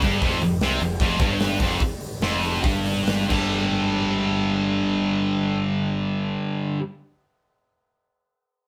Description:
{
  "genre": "hard rock",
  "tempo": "131-154 BPM",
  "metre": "4/4",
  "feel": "straight",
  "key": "unclear",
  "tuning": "A4 = 440 Hz",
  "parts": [
    { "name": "distorted electric guitar", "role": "riff", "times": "0.0-6.8 s", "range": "F2 to G3", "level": "-24 LUFS", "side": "equal", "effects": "overdrive" },
    { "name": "growling picked electric bass", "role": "bass", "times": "0.0-6.4 s", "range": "F1 to C2", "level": "-32 LUFS", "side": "equal", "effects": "overdrive" },
    { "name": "huge arena drum kit", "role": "drums", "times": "0.0-3.4 s", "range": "crash cymbal, hi-hat, kick drum, snare drum", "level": "-29 LUFS", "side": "equal", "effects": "none" }
  ],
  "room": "wet studio reverb, RT60 0.6 s",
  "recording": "band playing live in one room",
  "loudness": "-23 LUFS",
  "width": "mono",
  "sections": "0.0-3.5 A section; 3.5-7.2 B section",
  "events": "slowing down 0.2-3.5; drum fill 3.3",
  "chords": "0.2 F5; 3.3 G5",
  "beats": "| 0.22 0.61 1.00 1.40 | 1.81 2.22 2.65 3.08 | 3.53 3.99 4.45 4.91 | 5.37 5.83 6.28 6.74"
}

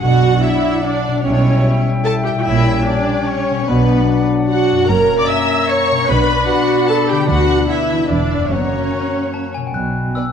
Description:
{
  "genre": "cinematic",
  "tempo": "148 BPM",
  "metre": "3/4",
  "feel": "straight",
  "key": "B minor",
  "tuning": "A4 = 440 Hz",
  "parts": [
    { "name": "clear studio violin section", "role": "melody", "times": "0.0-10.2 s", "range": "B4 to E6", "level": "-24 LUFS", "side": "left 4 dB", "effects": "none" },
    { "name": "bright concert flute", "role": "second line", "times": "0.0-9.5 s", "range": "F#5 to B5", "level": "-26 LUFS", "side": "left 2 dB", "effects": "none" },
    { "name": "dark chamber violin section", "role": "second line", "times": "0.0-10.2 s", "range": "B4 to E6", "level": "-26 LUFS", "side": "left 1 dB", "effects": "none" },
    { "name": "mellow clarinet", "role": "second line", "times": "0.0-9.5 s", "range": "C#5 to F#5", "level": "-28 LUFS", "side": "left 2 dB", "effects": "none" },
    { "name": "warm symphonic viola section", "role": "accompaniment", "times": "0.0-10.2 s", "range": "B3 to E5", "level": "-18 LUFS", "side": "right 2 dB", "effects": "none" },
    { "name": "warm French horn section", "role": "sustained chords", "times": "0.0-9.5 s", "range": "F#3 to F#4", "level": "-22 LUFS", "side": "left 5 dB", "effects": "none" },
    { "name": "concert harp", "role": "arpeggios", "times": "0.0-10.3 s", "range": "F#2 to D5", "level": "-23 LUFS", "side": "left 6 dB", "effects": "none" },
    { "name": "rich chamber cello section", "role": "bass", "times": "0.0-10.1 s", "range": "E2 to D3", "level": "-23 LUFS", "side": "right 3 dB", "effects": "none" },
    { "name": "warm studio double bass section", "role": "bass", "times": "0.0-10.1 s", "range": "E1 to D2", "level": "-20 LUFS", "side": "right 3 dB", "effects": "none" },
    { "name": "glockenspiel with hard plastic mallets", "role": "melody", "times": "9.3-10.3 s", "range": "G5 to F#6", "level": "-24 LUFS", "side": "left 2 dB", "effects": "none" }
  ],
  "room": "wet scoring stage reverb, RT60 1.9 s",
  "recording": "dark, warm production",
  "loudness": "-13 LUFS",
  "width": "side -7 dB against mid",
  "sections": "0.0-9.7 A section",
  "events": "none",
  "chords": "0.0 Bm; 1.2 C#m7b5/B; 2.5 A#dim7; 3.7 Bm; 4.9 F#7; 6.1 Bm; 7.3 Bm/D; 8.1 Em; 8.5 F#; 9.7 Bm",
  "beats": "| 0.03 0.44 0.84 | 1.25 1.66 2.06 | 2.46 2.87 3.27 | 3.68 4.08 4.49 | 4.88 5.29 5.69 | 6.09 6.49 6.89 | 7.29 7.70 8.10 | 8.51 8.92 9.34 | 9.74 10.15"
}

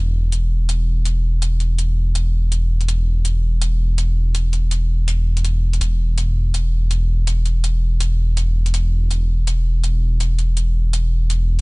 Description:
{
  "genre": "half-time drum and bass",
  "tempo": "164 BPM",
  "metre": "4/4",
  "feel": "swing 57% on 16ths, half-time",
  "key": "unclear",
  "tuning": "A4 = 440 Hz",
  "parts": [
    { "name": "dark detuned saw bass", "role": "bass", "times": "0.0-11.6 s", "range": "E1", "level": "-16 LUFS", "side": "equal", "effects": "none" },
    { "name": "electronic hi-hat", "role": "drums", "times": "0.3-11.6 s", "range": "none", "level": "-30 LUFS", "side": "left 1 dB", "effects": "none" }
  ],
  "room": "little or no reverb",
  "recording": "nothing above 10.6 kHz",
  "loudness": "-16 LUFS",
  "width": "side -28 dB against mid",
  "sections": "0.0-11.6 A section",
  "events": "none",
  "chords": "none",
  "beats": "0.32 0.69 1.06 | 1.42 1.79 2.15 2.52 | 2.88 3.25 3.62 3.98 | 4.35 4.71 5.08 5.45 | 5.81 6.18 6.54 6.91 | 7.28 7.64 8.01 8.37 | 8.74 9.10 9.47 9.84 | 10.20 10.57 10.93 11.30"
}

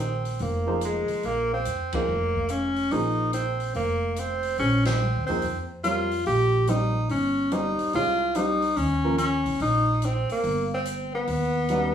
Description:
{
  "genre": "modal jazz",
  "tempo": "144 BPM",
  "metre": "4/4",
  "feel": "swing 65% on 8ths",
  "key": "Bb dorian",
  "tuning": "A4 = 437 Hz",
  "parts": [
    { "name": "clear tenor saxophone", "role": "melody", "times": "0.0-11.9 s", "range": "Ab3 to G4", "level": "-25 LUFS", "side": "equal", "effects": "none" },
    { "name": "clear upright piano", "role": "accompaniment", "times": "0.0-9.2, 11.7-11.9 s", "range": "Eb3 to Db5", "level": "-29 LUFS", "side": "right 1 dB", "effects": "none" },
    { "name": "upright bass", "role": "bass", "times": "0.0-11.9 s", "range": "F1 to F2", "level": "-28 LUFS", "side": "equal", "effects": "none" },
    { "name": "open jazz drum kit", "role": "drums", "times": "0.2-11.8 s", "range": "hi-hat, kick drum, ride cymbal, snare drum", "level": "-38 LUFS", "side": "left 2 dB", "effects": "none" }
  ],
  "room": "moderate studio reverb, RT60 0.5 s",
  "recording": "band playing live in one room, studio reverb",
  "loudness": "-23 LUFS",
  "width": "side -9 dB against mid",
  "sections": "0.0-11.9 A section",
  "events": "band accent 1.9, 4.8",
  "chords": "0.0 Bb9sus4; 6.3 Cm; 11.3 Eb7alt",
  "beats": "0.41 0.82 | 1.24 1.66 2.08 2.50 | 2.92 3.34 3.76 4.18 | 4.59 5.01 5.43 5.85 | 6.27 6.68 7.10 7.52 | 7.94 8.35 8.77 9.19 | 9.60 10.02 10.44 10.85 | 11.27 11.69"
}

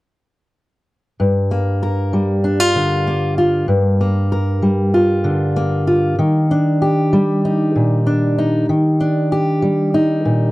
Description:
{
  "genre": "folk",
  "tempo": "96 BPM",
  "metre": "4/4",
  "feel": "straight",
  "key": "G minor",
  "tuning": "A4 = 442 Hz",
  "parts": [
    { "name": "fingerpicked steel-string acoustic guitar", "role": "accompaniment", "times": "1.2-10.5 s", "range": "G2 to Bb4", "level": "-14 LUFS", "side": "equal", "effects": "none" }
  ],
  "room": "moderate booth ambience, RT60 0.2 s",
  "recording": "dry, close 1970s-style studio recording",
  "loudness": "-14 LUFS",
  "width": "side -18 dB against mid",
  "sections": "1.2-10.5 A section",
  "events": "none",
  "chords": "1.2 Gm7; 6.2 Ebmaj7",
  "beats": "| 1.20 1.82 2.44 3.07 | 3.69 4.32 4.94 5.56 | 6.19 6.81 7.43 8.06 | 8.68 9.31 9.93"
}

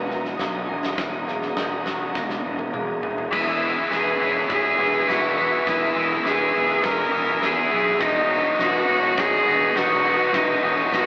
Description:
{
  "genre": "post-rock",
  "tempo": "102 BPM",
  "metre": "4/4",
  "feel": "straight",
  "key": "E lydian",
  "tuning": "A4 = 439 Hz",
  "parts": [
    { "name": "warm studio string section", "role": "sustained chords", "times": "0.0-11.1 s", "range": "B3 to E6", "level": "-32 LUFS", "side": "equal", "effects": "none" },
    { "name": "twangy electric guitar", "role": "arpeggios", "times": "0.0-11.1 s", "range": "E3 to F#4", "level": "-31 LUFS", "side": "equal", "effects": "none" },
    { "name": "vibraphone with hard mallets", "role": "arpeggios", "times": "0.0-11.1 s", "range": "G#4 to A#5", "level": "-30 LUFS", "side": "right 1 dB", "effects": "none" },
    { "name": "fuzz fingered electric bass", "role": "bass", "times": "0.0-11.1 s", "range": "E1 to E2", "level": "-30 LUFS", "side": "equal", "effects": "overdrive" },
    { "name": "huge arena drum kit", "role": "drums", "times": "0.1-11.1 s", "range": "crash cymbal, kick drum, snare drum, toms", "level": "-29 LUFS", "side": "equal", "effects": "none" },
    { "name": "cranked stack guitar", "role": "riff", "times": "3.3-11.1 s", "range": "E3 to B4", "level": "-22 LUFS", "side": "left 1 dB", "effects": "overdrive" },
    { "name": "clear cello", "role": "melody", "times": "3.4-11.1 s", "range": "D#4 to A#4", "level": "-22 LUFS", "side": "equal", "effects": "none" }
  ],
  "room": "wet stone room reverb, RT60 1.0 s",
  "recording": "band playing live in one room, AM radio sound",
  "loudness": "-19 LUFS",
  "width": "side -23 dB against mid",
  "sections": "0.0-3.3 A section; 3.3-11.1 B section",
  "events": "drum fill 2.2-3.3, 3.3-11.1; build-up 3.3-11.1",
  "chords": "0.0 D#m/E; 3.3 E; 8.0 F#5/E",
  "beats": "0.39 | 0.98 1.56 2.15 2.74 | 3.32 3.91 4.49 5.08 | 5.67 6.25 6.84 7.42 | 8.01 8.59 9.18 9.76 | 10.35 10.93"
}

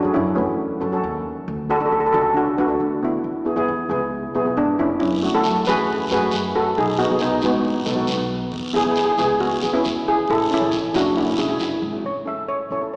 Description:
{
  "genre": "calypso",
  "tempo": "136 BPM",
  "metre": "4/4",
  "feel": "straight",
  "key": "A major",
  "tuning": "A4 = 441 Hz",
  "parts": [
    { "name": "steel pan", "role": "melody", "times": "0.0-13.0 s", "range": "G#3 to E5", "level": "-23 LUFS", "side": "equal", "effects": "none" },
    { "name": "steel pan", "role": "accompaniment", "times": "0.0-13.0 s", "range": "A3 to B4", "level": "-27 LUFS", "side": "equal", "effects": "none" },
    { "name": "upright bass", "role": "bass", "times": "0.0-13.0 s", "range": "E1 to F#2", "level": "-32 LUFS", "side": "equal", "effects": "none" },
    { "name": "guiro", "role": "percussion", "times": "5.0-11.7 s", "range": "none", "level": "-33 LUFS", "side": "equal", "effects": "none" }
  ],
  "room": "wet church reverb, RT60 2.7 s",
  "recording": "recorded in a church or concert hall, small speaker sound",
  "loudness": "-21 LUFS",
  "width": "mono",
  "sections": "0.0-12.1 A section",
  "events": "none",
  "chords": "0.0 F#m7; 1.5 D; 3.2 E; 5.0 F#m7; 6.8 B7; 8.5 E; 10.3 A",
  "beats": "0.15 0.59 1.03 | 1.47 1.91 2.36 2.80 | 3.24 3.68 4.12 4.56 | 5.00 5.44 5.88 6.32 | 6.76 7.20 7.64 8.08 | 8.52 8.96 9.40 9.85 | 10.29 10.73 11.17 11.61 | 12.05 12.50 12.94"
}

